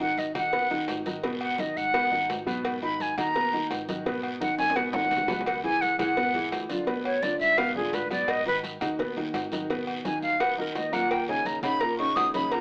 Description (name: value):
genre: Afro-Cuban jazz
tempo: 170 BPM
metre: 4/4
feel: straight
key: G# minor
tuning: A4 = 440 Hz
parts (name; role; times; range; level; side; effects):
- breathy silver concert flute; melody; 0.0-12.6 s; Ab4 to D#6; -28 LUFS; equal; none
- warm grand piano; accompaniment; 0.0-12.6 s; A#2 to B4; -33 LUFS; equal; none
- upright bass; bass; 0.0-12.6 s; G#1 to G#2; -47 LUFS; equal; none
- agogo bells and timbales; percussion; 0.0-12.6 s; none; -38 LUFS; equal; none
- congas; percussion; 0.0-12.6 s; none; -45 LUFS; equal; none
- cowbell and bongos; percussion; 0.2-12.6 s; none; -39 LUFS; equal; none
- guiro; percussion; 0.2-12.6 s; none; -44 LUFS; equal; none
room: moderate club reverb, RT60 0.8 s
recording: AM radio sound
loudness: -27 LUFS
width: mono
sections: 0.0-12.6 A section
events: flute solo 0.0-12.6; drum fill 4.6-5.5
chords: 0.0 G#m7; 5.5 C#m7; 6.9 Ddim7; 8.3 G#m7; 11.1 D#5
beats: 0.18 0.53 0.89 | 1.24 1.59 1.94 2.29 | 2.65 3.00 3.35 3.71 | 4.06 4.41 4.76 5.11 | 5.47 5.82 6.17 6.52 | 6.88 7.23 7.58 7.93 | 8.29 8.64 8.99 9.34 | 9.69 10.05 10.40 10.75 | 11.10 11.46 11.81 12.16 | 12.51